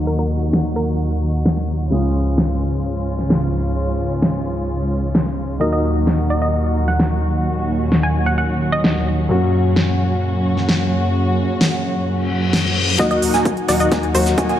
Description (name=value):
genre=EDM, festival progressive house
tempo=130 BPM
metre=4/4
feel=straight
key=Eb minor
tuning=A4 = 437 Hz
part: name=dark concert grand piano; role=accompaniment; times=0.0-14.6 s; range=Db3 to Bb4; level=-24 LUFS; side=left 2 dB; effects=sidechain pumping, digital delay
part: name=dark studio string section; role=sustained chords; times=0.0-14.6 s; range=Ab2 to Gb4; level=-23 LUFS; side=equal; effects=sidechain pumping, low-pass filter
part: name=wide detuned saw bass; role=bass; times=0.0-14.5 s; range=Db2 to Gb2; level=-20 LUFS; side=equal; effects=chorus, sidechain pumping
part: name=downlifter, reverse cymbal and riser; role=sound effects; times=0.0-1.9, 12.2-14.6 s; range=none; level=-25 LUFS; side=left 5 dB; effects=none
part: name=hollow square pluck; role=melody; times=0.1-1.2, 5.6-9.1, 13.0-14.3 s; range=Bb4 to Ab5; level=-24 LUFS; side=equal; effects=chorus, digital delay
part: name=big-room dance drum kit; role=drums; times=0.5-14.6 s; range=hi-hat, shaker, snare drum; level=-20 LUFS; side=equal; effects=high-pass filter on hats, high-pass filter on cymbals, high-pass filter on perc, high-pass filter on snare
part: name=plucky unison lead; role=arpeggios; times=13.0-14.6 s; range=Gb5 to Ab5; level=-25 LUFS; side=right 5 dB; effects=phaser, sidechain pumping, digital delay
part: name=dense compressed supersaw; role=riff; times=13.0-14.6 s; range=Bb3 to Ab5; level=-23 LUFS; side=equal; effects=sidechain pumping, low-pass filter, digital delay
part: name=electronic kick drum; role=drums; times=13.0-14.5 s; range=none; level=-21 LUFS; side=equal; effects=overdrive, high-pass filter on kick, high-pass filter on room
room=light reverb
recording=low-pass filter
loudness=-16 LUFS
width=side -11 dB against mid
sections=0.0-13.0 A section; 13.0-14.6 B section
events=filter sweep on string section 0.0-13.0; filter sweep 0.0-13.0, 13.0-14.6; reverse cymbal 12.2-13.0; build-up 13.0-14.6; drum fill 13.0-14.6; riser 13.0-14.6; filter sweep on digital synth lead 13.0-14.6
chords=0.0 Ebm; 1.9 Db; 5.6 Ebm; 9.3 Gb; 13.0 Ebm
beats=| 0.07 0.53 0.99 1.46 | 1.92 2.38 2.84 3.30 | 3.76 4.22 4.69 5.15 | 5.61 6.07 6.53 6.99 | 7.46 7.92 8.38 8.84 | 9.30 9.76 10.22 10.69 | 11.15 11.61 12.07 12.53 | 12.99 13.46 13.92 14.38